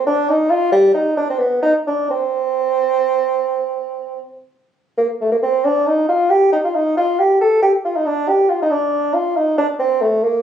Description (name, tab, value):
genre	classical, baroque-style fantasia for unaccompanied bassoon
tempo	81-95 BPM (dotted quarters)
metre	12/8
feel	rubato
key	C minor, G minor from 5.0 s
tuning	A4 = 437 Hz
part	dark bassoon	solo	0.0-10.4 s	G3 to A4	-14 LUFS	right 1 dB	none
room	moderate stone room reverb, RT60 1.0 s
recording	recorded on a phone in the room, studio reverb, compression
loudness	-14 LUFS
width	side -9 dB against mid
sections	0.0-5.0 A section; 5.0-10.4 A section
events	none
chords	none